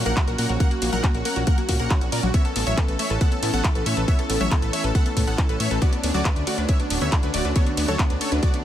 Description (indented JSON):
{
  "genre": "uplifting trance",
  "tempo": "138 BPM",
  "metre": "4/4",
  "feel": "straight",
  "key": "unclear",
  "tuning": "A4 = 441 Hz",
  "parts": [
    { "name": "supersaw stab", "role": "melody", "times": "0.0-8.6 s", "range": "D4 to F#5", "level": "-27 LUFS", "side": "right 1 dB", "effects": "sidechain pumping, dub echo" },
    { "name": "lush unison pad", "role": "sustained chords", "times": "0.0-8.6 s", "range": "D3 to F#4", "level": "-30 LUFS", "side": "equal", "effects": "chorus, vintage 12-bit sampler grit, sidechain pumping" },
    { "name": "fat analog bass", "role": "bass", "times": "0.0-8.4 s", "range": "D1 to A#2", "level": "-26 LUFS", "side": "equal", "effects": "sidechain pumping" },
    { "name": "wide unison pluck", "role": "arpeggios", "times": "0.1-8.6 s", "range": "A#2 to B4", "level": "-31 LUFS", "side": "left 3 dB", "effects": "sidechain pumping, dub echo" },
    { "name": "house drum kit", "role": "drums", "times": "0.1-8.6 s", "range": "handclaps, hi-hat, ride cymbal", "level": "-29 LUFS", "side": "equal", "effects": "sidechain pumping on hats, sidechain pumping on cymbals" },
    { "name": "electronic kick drum", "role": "drums", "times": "0.2-8.5 s", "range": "none", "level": "-21 LUFS", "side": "equal", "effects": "none" }
  ],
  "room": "digital ambience",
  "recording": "none",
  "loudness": "-19 LUFS",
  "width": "side -11 dB against mid",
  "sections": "0.0-8.6 A section",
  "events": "none",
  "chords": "0.0 F#/A#; 2.3 A; 5.8 Dmaj7"
}